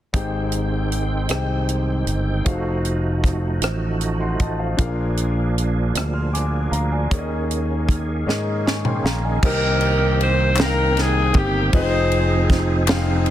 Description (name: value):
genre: slow gospel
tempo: 52 BPM (dotted quarters)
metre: 6/8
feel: straight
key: Ab major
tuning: A4 = 440 Hz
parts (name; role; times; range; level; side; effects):
- clear concert grand piano; accompaniment; 0.1-13.3 s; Ab2 to F6; -26 LUFS; left 3 dB; none
- bright tonewheel organ; sustained chords; 0.1-13.3 s; Eb3 to G5; -27 LUFS; right 4 dB; slow rotary speaker, chorus vibrato
- fingered electric bass; bass; 0.1-13.3 s; F1 to Ab2; -22 LUFS; equal; none
- tight funk drum kit; drums; 0.1-13.3 s; crash cymbal, hi-hat, kick drum, ride cymbal, rim click, snare drum, toms; -22 LUFS; equal; soft clipping on snare
- clear saxophone section; melody; 9.5-12.9 s; Eb4 to C5; -22 LUFS; left 1 dB; slapback echo
- group handclap; percussion; 10.6-13.2 s; none; -26 LUFS; left 8 dB; none
room: studio ambience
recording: dense, heavily limited modern master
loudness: -18 LUFS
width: side -12 dB against mid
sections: 0.1-9.4 A section; 9.4-13.3 B section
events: drum fill 8.3-9.4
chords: 0.1 Abmaj7; 2.5 F7b9; 4.8 Bb7; 7.1 Eb7sus4; 9.4 Cm7; 11.7 Fm7